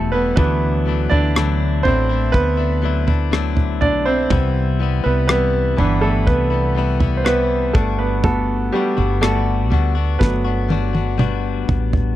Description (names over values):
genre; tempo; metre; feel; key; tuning
pop ballad; 61 BPM; 4/4; straight; unclear; A4 = 438 Hz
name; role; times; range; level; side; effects
clear concert grand piano; accompaniment; 0.0-12.2 s; E3 to D5; -20 LUFS; right 3 dB; none
direct-recorded clean electric guitar; arpeggios; 0.0-12.2 s; E2 to F#4; -24 LUFS; left 12 dB; spring reverb
mellow fretless electric bass; bass; 0.0-12.1 s; E1 to D2; -20 LUFS; equal; wide subtle chorus
damped 70s drum kit; drums; 0.4-12.2 s; kick drum, rim click, snare drum, toms; -18 LUFS; right 1 dB; none
room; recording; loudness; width
little or no reverb; dry, close 1970s-style studio recording; -15 LUFS; side -14 dB against mid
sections
0.0-12.2 A section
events
grand piano solo 0.0-12.2; drum fill 10.2-12.2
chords
0.4 Dadd9; 4.3 Cmaj7; 7.7 Gmaj7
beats
| 0.37 1.35 2.33 3.32 | 4.30 5.29 6.27 7.25 | 8.24 9.22 10.20 11.19